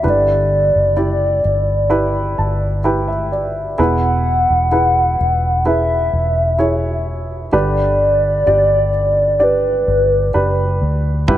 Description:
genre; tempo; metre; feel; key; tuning
pop ballad; 64 BPM; 4/4; straight; unclear; A4 = 440 Hz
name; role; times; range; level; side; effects
hollow clarinet-like synth lead; melody; 0.0-11.4 s; B4 to F#5; -16 LUFS; equal; chorus, ping-pong delay
dark baby grand piano; accompaniment; 0.0-11.4 s; G2 to A5; -20 LUFS; right 1 dB; none
vintage muted fingered electric bass; bass; 0.0-11.4 s; E1 to D2; -19 LUFS; equal; none
natural country drum kit; drums; 11.3-11.4 s; kick drum, toms; -16 LUFS; equal; none
room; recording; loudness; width
light reverb; none; -13 LUFS; side -12 dB against mid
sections
0.0-3.8 A section; 3.8-11.4 B section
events
grand piano fill 1.9-3.8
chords
0.0 G6; 3.8 E; 7.5 G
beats
| 0.04 0.97 1.91 2.85 | 3.79 4.72 5.66 6.60 | 7.54 8.47 9.41 10.35 | 11.29

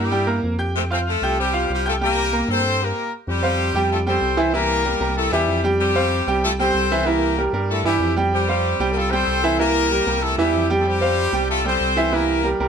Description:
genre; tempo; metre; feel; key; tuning
latin, salsa; 190 BPM; 4/4; straight; F major; A4 = 440 Hz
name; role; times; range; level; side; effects
bright horn section; melody; 0.0-12.5 s; C3 to C5; -21 LUFS; left 3 dB; none
bright concert grand piano; accompaniment; 0.0-12.7 s; E3 to G6; -21 LUFS; right 3 dB; none
round analog bass; bass; 0.0-12.7 s; C2 to G2; -25 LUFS; equal; none
room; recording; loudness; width
light reverb; none; -17 LUFS; side -7 dB against mid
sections
0.0-3.3 A section; 3.3-12.7 B section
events
stop 2.6-3.3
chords
0.0 C7 (rootless); 0.7 Fadd9; 2.0 C5; 3.3 Fadd9; 4.5 C7; 5.8 Fadd9; 7.1 C7; 8.3 Fadd9; 9.6 C7; 10.9 Fadd9; 12.1 C7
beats
0.12 0.43 | 0.75 1.06 1.38 1.70 | 2.01 2.33 2.64 2.96 | 3.28 3.59 3.91 4.22 | 4.54 4.86 5.17 5.49 | 5.80 6.12 6.43 6.75 | 7.07 7.38 7.70 8.01 | 8.33 8.65 8.96 9.28 | 9.59 9.91 10.23 10.54 | 10.86 11.18 11.49 11.81 | 12.12 12.44

